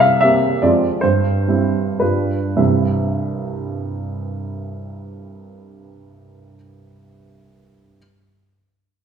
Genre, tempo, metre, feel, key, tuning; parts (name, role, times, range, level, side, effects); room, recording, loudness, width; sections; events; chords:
classical, romantic triple-time dance for piano with dotted rhythms; 97-162 BPM; 3/4; rubato; C major; A4 = 440 Hz
warm baby grand piano; solo; 0.0-8.0 s; C2 to F5; -16 LUFS; right 1 dB
wet recital hall reverb, RT60 1.5 s; recorded in a church or concert hall; -16 LUFS; side -7 dB against mid
0.0-2.6 A section; 2.6-5.9 B section
slowing down 0.0-2.6
0.0 C7; 0.6 Fm; 1.0 C/G; 2.0 G7; 2.6 C